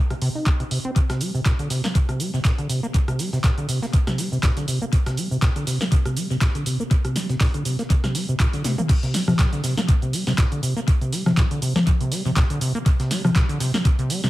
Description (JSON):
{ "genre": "acid house", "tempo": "121 BPM", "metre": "4/4", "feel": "swing 55% on 16ths", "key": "unclear", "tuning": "A4 = 438 Hz", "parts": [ { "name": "deep acid bass", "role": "riff", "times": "0.1-14.3 s", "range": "Bb2 to Eb4", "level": "-24 LUFS", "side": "equal", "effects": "tube saturation, sidechain pumping, dub echo" }, { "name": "punchy analog drum machine", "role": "drums", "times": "0.1-14.3 s", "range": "congas, crash cymbal, handclaps, hi-hat, rim click, shaker, snare drum, toms", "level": "-26 LUFS", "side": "equal", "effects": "tape echo" }, { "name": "electronic kick drum", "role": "drums", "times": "0.5-14.0 s", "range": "none", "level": "-19 LUFS", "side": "equal", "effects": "none" }, { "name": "breakbeat sampler-style drum kit", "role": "drums", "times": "1.0-14.2 s", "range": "hi-hat, snare drum", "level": "-39 LUFS", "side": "right 1 dB", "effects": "none" } ], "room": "light reverb", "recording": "echo-heavy mix", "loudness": "-19 LUFS", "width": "side -16 dB against mid", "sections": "0.0-8.9 A section; 8.9-14.3 B section", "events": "drum fill 8.6; drop 8.9-14.3", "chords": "none" }